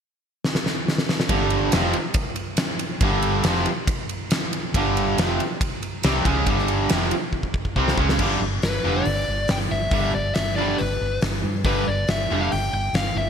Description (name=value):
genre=hard rock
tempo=139 BPM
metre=4/4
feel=straight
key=G mixolydian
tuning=A4 = 440 Hz
part: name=huge arena drum kit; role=drums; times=0.4-13.1 s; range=crash cymbal, hi-hat, kick drum, ride cymbal, snare drum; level=-24 LUFS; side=equal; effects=gated reverb
part: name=overdriven semi-hollow guitar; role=riff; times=1.3-12.5 s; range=F2 to C#4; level=-26 LUFS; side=right 12 dB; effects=lush chorus
part: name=tight distorted guitar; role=riff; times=1.3-12.5 s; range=F2 to C#4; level=-28 LUFS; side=left 11 dB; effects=distortion
part: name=hollow-body short-scale fingered electric bass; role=bass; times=1.3-13.3 s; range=F1 to G2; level=-26 LUFS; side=equal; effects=none
part: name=biting lead guitar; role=melody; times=8.6-13.3 s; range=B4 to G5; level=-25 LUFS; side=left 2 dB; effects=overdrive
room=moderate lush hall reverb, RT60 1.8 s, small room ambience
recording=bright 1980s-style digital production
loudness=-20 LUFS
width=side -7 dB against mid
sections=0.0-1.3 A section; 1.3-8.2 B section; 8.2-13.3 C section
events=drum fill 0.4-1.3, 7.3-8.2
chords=0.0 N.C.; 1.3 G5